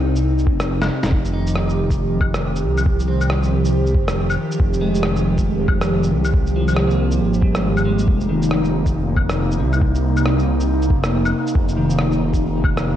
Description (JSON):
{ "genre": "future garage", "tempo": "138 BPM", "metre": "4/4", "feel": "swing 61% on 16ths", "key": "F minor", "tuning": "A4 = 444 Hz", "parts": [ { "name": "airy breathy pad", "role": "sustained chords", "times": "0.0-13.0 s", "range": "C3 to G4", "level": "-21 LUFS", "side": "equal", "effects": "chorus, vintage 12-bit sampler grit, sidechain pumping" }, { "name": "dark detuned saw bass", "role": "bass", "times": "0.0-13.0 s", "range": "Eb1 to C2", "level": "-20 LUFS", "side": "equal", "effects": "sidechain pumping" }, { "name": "electronic shaker, rim click, snare drum and claves", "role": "drums", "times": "0.2-12.8 s", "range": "none", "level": "-26 LUFS", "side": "left 1 dB", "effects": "none" }, { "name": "electronic kick drum", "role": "drums", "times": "0.5-12.7 s", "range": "none", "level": "-18 LUFS", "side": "equal", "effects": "none" }, { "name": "clean electric guitar", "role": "accompaniment", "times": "1.3-13.0 s", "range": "C3 to Eb4", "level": "-25 LUFS", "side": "right 1 dB", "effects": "analog chorus, sidechain pumping, analog delay" } ], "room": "moderate lush hall reverb, RT60 1.8 s", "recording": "dreamy mix soaked in reverb, cassette tape", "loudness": "-16 LUFS", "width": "side -11 dB against mid", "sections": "0.0-13.0 A section", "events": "drum fill 0.8-1.1", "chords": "0.0 Cm; 1.1 Fm9" }